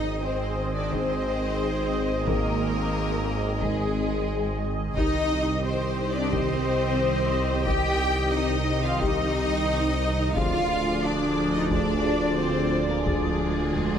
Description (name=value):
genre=cinematic, hybrid orchestral and electronic film score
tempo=89 BPM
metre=4/4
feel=straight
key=C minor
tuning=A4 = 440 Hz
part: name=rich symphonic violin section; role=melody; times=0.0-14.0 s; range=Ab4 to G5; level=-34 LUFS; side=left 3 dB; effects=none
part: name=warm symphonic violin section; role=second line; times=0.0-14.0 s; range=Ab4 to G5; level=-33 LUFS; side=left 4 dB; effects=none
part: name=clear symphonic viola section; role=accompaniment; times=0.0-14.0 s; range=F4 to Eb5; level=-33 LUFS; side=right 1 dB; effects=none
part: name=phased analog pad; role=sustained chords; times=0.0-14.0 s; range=Eb3 to Eb5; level=-30 LUFS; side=left 2 dB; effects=phaser, chorus
part: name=pure sine sub bass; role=bass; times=0.0-14.0 s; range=D1 to C2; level=-34 LUFS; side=equal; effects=none
part: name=rich studio cello section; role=bass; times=0.0-14.0 s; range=Ab3 to G4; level=-30 LUFS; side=right 2 dB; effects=none
part: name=warm symphonic double bass section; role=bass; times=0.0-14.0 s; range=Ab1 to D2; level=-33 LUFS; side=right 2 dB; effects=none
part: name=warm tuba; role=bass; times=0.0-14.0 s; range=Ab1 to D2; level=-31 LUFS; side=right 3 dB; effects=none
part: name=dark French horn section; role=sustained chords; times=0.9-13.3 s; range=Eb3 to Ab4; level=-35 LUFS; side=left 4 dB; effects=none
part: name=taiko ensemble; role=drums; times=0.9-14.0 s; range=none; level=-33 LUFS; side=equal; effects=none
part: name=reverse cymbal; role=sound effects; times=13.5-14.0 s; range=none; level=-40 LUFS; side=right 1 dB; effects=none
room=moderate scoring stage reverb, RT60 1.8 s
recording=none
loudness=-23 LUFS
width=side -8 dB against mid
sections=0.0-14.0 A section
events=reverse cymbal 13.5-14.0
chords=0.0 Ab; 5.0 Cm; 10.4 Ddim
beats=0.25 0.92 1.60 | 2.27 2.95 3.62 4.29 | 4.97 5.64 6.32 6.99 | 7.67 8.34 9.01 9.69 | 10.36 11.04 11.71 12.38 | 13.06 13.73